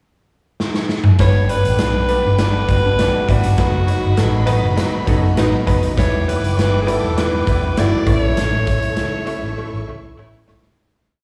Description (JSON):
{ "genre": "uptempo 1960s-style soul", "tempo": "100 BPM", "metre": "4/4", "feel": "straight", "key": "unclear", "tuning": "A4 = 440 Hz", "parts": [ { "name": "raw garage drum kit", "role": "drums", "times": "0.6-10.8 s", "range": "hi-hat, kick drum, snare drum, toms", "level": "-22 LUFS", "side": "equal", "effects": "none" }, { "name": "raspy alto saxophone", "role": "melody", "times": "1.2-10.5 s", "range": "F#4 to D5", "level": "-24 LUFS", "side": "equal", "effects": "slapback echo, tape echo" }, { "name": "warm studio string section", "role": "second line", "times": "1.2-10.7 s", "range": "D4 to D6", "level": "-31 LUFS", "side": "equal", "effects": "slapback echo, tape echo" }, { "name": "clear upright piano", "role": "accompaniment", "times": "1.2-10.7 s", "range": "F#3 to C#5", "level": "-26 LUFS", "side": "equal", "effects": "slapback echo" }, { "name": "overdriven tonewheel organ", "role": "sustained chords", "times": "1.2-10.7 s", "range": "D3 to E4", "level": "-35 LUFS", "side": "equal", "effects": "none" }, { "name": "vintage muted fingered electric bass", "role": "bass", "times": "1.2-10.7 s", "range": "E1 to C#2", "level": "-21 LUFS", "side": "equal", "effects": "none" }, { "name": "mellow saxophone section", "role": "second line", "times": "2.1-10.7 s", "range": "B2 to E4", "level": "-31 LUFS", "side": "equal", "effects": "none" }, { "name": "hollow-body jazz guitar", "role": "riff", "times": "2.7-6.0 s", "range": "D#3 to B4", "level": "-32 LUFS", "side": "equal", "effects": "none" } ], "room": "small room reverb", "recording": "live gig heard through the venue's PA, recital hall reverb, studio ambience", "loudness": "-17 LUFS", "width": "mono", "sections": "0.0-1.2 pickup bar; 1.2-10.8 pre-chorus", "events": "drum fill 0.6-1.2, 9.6-10.8; fade-out 8.4-10.8", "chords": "0.0 N.C.; 1.2 G; 3.6 B/F#; 6.0 Em; 8.1 A" }